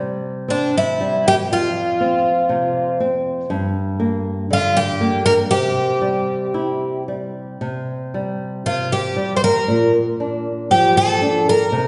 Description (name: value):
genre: fado-style ballad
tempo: 59 BPM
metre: 2/4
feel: rubato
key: unclear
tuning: A4 = 435 Hz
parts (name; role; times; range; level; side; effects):
- flamenco guitar; accompaniment; 0.0-11.9 s; F2 to E4; -24 LUFS; equal; none
- picked twelve-string acoustic guitar; melody; 0.5-11.9 s; D4 to C5; -19 LUFS; equal; none
room: wet recital hall reverb, RT60 1.6 s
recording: heard from further back in the room, nothing above 10.9 kHz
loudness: -19 LUFS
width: mono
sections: 0.0-11.9 A section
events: none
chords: 0.0 C5; 1.5 F5; 3.5 Gm; 5.5 C; 7.6 C5; 9.7 Bb